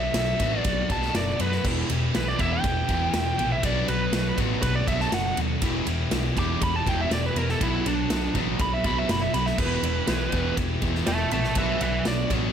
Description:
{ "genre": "hard rock", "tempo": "121 BPM", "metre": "4/4", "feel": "straight", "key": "E minor", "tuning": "A4 = 440 Hz", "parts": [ { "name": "bluesy overdriven lead guitar", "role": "melody", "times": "0.0-12.3 s", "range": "D4 to D6", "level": "-28 LUFS", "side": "right 2 dB", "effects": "distortion, slapback echo" }, { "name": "distorted electric guitar", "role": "riff", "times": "0.0-12.5 s", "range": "B2 to G4", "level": "-31 LUFS", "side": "left 1 dB", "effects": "distortion" }, { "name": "sludgy distorted guitar", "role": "riff", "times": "0.0-12.5 s", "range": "E2 to B3", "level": "-31 LUFS", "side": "left 10 dB", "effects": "overdrive" }, { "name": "overdriven picked electric bass", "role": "bass", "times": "0.0-12.5 s", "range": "E1 to F#2", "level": "-29 LUFS", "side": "equal", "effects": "none" }, { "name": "big rock drum kit", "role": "drums", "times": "0.1-12.4 s", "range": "crash cymbal, kick drum, ride cymbal, snare drum", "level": "-29 LUFS", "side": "equal", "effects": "none" }, { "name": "overdriven semi-hollow guitar", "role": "riff", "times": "1.6-12.5 s", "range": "E2 to B3", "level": "-32 LUFS", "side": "right 9 dB", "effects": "none" } ], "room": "small room ambience", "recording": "none", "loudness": "-22 LUFS", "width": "side -8 dB against mid", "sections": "0.0-12.5 A section", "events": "lead electric guitar solo 0.0-12.5", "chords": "0.0 Bm; 1.6 Em; 3.6 Bm; 5.6 Em; 7.6 Bm; 9.6 Em; 11.6 Bm", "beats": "0.16 0.66 1.15 | 1.65 2.15 2.65 3.14 | 3.64 4.14 4.63 5.13 | 5.63 6.12 6.62 7.12 | 7.61 8.11 8.60 9.10 | 9.59 10.09 10.58 11.07 | 11.57 12.06" }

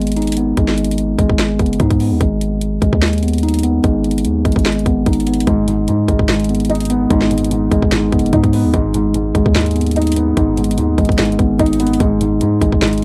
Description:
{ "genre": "hip hop, trap", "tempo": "147 BPM", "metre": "4/4", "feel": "half-time", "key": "G# minor", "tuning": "A4 = 441 Hz", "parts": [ { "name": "mellow tine electric piano", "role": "arpeggios", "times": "0.0-13.0 s", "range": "G#3 to D#4", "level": "-19 LUFS", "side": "equal", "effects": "low-pass filter, tape echo" }, { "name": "long sustained 808-style bass", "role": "bass", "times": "0.0-13.0 s", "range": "F#1 to G#2", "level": "-21 LUFS", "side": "equal", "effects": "none" }, { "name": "trap drum kit", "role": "drums", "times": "0.0-13.0 s", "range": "hi-hat, kick drum, snare drum", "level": "-20 LUFS", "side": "equal", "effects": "cassette tape" }, { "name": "dark concert grand piano", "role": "accompaniment", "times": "5.5-13.0 s", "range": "G#2 to D#4", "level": "-21 LUFS", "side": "equal", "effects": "low-pass filter" } ], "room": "light reverb", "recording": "home recording on cassette", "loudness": "-15 LUFS", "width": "mono", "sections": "0.0-13.0 A section", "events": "none", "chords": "0.0 G#m", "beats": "0.17 | 0.57 0.98 1.39 1.80 | 2.21 2.62 3.02 3.43 | 3.84 4.25 4.66 5.06 | 5.47 5.88 6.29 6.70 | 7.11 7.51 7.92 8.33 | 8.74 9.15 9.55 9.96 | 10.37 10.78 11.19 11.60 | 12.00 12.41 12.82" }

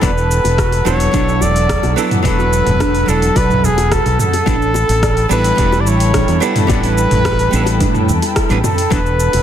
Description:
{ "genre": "sunset chillout", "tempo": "108 BPM", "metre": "4/4", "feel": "straight", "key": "unclear", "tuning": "A4 = 440 Hz", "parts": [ { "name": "clear flugelhorn", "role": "melody", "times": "0.0-9.4 s", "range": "G#4 to D5", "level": "-18 LUFS", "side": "equal", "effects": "ping-pong delay, shimmer reverb" }, { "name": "archtop guitar, miked and amplified", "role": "accompaniment", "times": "0.0-9.0 s", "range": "F#3 to B4", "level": "-20 LUFS", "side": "moving between left 3 dB and right 4 dB", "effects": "auto-pan, digital delay, shimmer reverb" }, { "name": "airy breathy pad", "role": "sustained chords", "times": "0.0-9.4 s", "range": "A4 to E6", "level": "-24 LUFS", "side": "equal", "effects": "chorus, shimmer reverb" }, { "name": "soft round pluck", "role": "arpeggios", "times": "0.0-9.2 s", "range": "D4 to D5", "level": "-26 LUFS", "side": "right 2 dB", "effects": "ensemble chorus, cassette tape, digital delay, shimmer reverb" }, { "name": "fretless electric bass", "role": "bass", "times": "0.0-9.4 s", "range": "E1 to A2", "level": "-16 LUFS", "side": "equal", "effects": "ensemble chorus" }, { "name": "deep house drum kit", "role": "drums", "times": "0.0-9.4 s", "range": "cabasa, hi-hat, rim click, toms", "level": "-20 LUFS", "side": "right 1 dB", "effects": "overdrive" }, { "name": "electronic kick drum", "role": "drums", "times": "0.0-9.0 s", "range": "none", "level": "-20 LUFS", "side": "equal", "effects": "overdrive" }, { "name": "bongos", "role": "percussion", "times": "0.4-9.4 s", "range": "none", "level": "-26 LUFS", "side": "left 9 dB", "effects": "none" } ], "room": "light reverb, digital ambience", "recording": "dense, heavily limited modern master", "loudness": "-12 LUFS", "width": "side -10 dB against mid", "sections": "0.0-9.4 A section", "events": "none", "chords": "0.0 E9sus4; 4.5 A9sus4; 8.9 E9sus4", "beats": "| 0.03 0.58 1.14 1.70 | 2.25 2.81 3.36 3.92 | 4.47 5.03 5.58 6.14 | 6.70 7.25 7.81 8.36 | 8.92" }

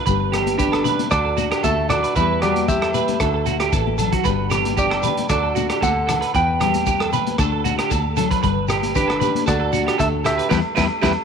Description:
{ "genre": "highlife guitar band", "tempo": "115 BPM", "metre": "4/4", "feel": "straight", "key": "G major", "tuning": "A4 = 440 Hz", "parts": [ { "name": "nylon-string guitar", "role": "accompaniment", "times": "0.0-11.1 s", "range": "E2 to G4", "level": "-26 LUFS", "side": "left 13 dB", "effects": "none" }, { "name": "semi-hollow electric guitar", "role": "arpeggios", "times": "0.0-11.1 s", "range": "E4 to B4", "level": "-23 LUFS", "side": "right 12 dB", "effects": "ensemble chorus, tape echo" }, { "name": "fingered electric bass", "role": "bass", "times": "0.1-11.1 s", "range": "G1 to E2", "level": "-25 LUFS", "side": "left 1 dB", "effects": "none" }, { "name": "crunchy breakbeat drum kit", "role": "drums", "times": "0.1-11.2 s", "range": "hi-hat, kick drum, rim click, snare drum", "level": "-26 LUFS", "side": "left 1 dB", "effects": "none" }, { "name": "shekere", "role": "percussion", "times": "0.1-11.2 s", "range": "none", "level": "-31 LUFS", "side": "left 8 dB", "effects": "none" }, { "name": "agogo bells", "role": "percussion", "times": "0.3-11.2 s", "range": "none", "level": "-30 LUFS", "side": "equal", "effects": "none" }, { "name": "congas", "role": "percussion", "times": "0.3-11.2 s", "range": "none", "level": "-28 LUFS", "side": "left 14 dB", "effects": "none" }, { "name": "clean electric guitar", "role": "melody", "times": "0.6-11.1 s", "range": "D4 to G5", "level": "-22 LUFS", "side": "right 2 dB", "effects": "none" } ], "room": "light reverb, studio ambience", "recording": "1960s-style stereo with parts hard left and right", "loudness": "-17 LUFS", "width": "side -6 dB against mid", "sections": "0.0-11.2 A section", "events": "drum fill 3.9-4.3; band accent 10.5-11.2", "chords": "0.1 G; 1.1 D; 2.2 Em; 3.2 D; 4.3 G; 5.3 D; 6.3 Em; 7.4 D; 8.4 G; 9.5 D; 10.5 Em", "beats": "| 0.07 0.59 1.11 1.64 | 2.16 2.69 3.21 3.73 | 4.25 4.78 5.30 5.82 | 6.34 6.87 7.39 7.91 | 8.43 8.95 9.47 9.99 | 10.51 11.03" }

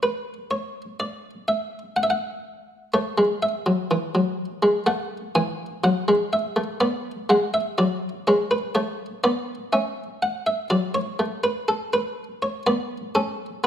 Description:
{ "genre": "classical, baroque-style two-part invention for harpsichord", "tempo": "62 BPM", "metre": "4/4", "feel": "straight", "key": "unclear", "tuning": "A4 = 437 Hz", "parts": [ { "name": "buff-stop harpsichord", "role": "solo", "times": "0.0-13.7 s", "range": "E3 to G#5", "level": "-21 LUFS", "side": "equal", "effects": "none" } ], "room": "moderate recital hall reverb, RT60 1.6 s", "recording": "none", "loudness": "-22 LUFS", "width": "side -10 dB against mid", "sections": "0.0-13.7 A section", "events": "none", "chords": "0.0 N.C.; 2.9 A; 4.9 A5; 6.8 G#dim; 8.8 A; 10.7 D/F# (rootless); 12.7 D5", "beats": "0.03 1.01 1.97 | 2.94 3.91 4.88 5.85 | 6.81 7.79 8.76 9.73 | 10.71 11.68 12.66 13.64" }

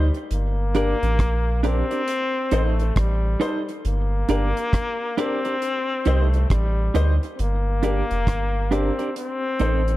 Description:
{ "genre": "roots reggae", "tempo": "68 BPM", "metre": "4/4", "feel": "swing 62% on 16ths", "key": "G minor", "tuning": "A4 = 442 Hz", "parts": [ { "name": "brilliant trombone", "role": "melody", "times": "0.0-10.0 s", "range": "G3 to C4", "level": "-26 LUFS", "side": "left 2 dB", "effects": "tape echo" }, { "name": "clean electric guitar", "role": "accompaniment", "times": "0.0-9.8 s", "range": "C4 to Eb5", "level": "-28 LUFS", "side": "right 6 dB", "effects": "tape echo" }, { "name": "dark upright piano", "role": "stabs", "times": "0.0-9.9 s", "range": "D4 to C5", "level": "-30 LUFS", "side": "left 5 dB", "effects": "none" }, { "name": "soft dub sub bass", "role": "bass", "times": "0.0-10.0 s", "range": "F1 to D2", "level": "-21 LUFS", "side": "equal", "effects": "none" }, { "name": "deep reggae drum kit", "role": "drums", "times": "0.1-10.0 s", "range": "hi-hat, kick drum, rim click", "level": "-24 LUFS", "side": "equal", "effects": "none" } ], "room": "light reverb, small room ambience", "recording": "dark, warm production", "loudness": "-20 LUFS", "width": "side -16 dB against mid", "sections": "0.0-10.0 A section", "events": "none", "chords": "0.3 Gm; 2.1 Adim; 3.8 Gm; 5.6 Cm; 7.4 Gm; 9.2 Adim", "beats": "| 0.31 1.19 2.08 2.96 | 3.85 4.73 5.62 6.50 | 7.39 8.27 9.16" }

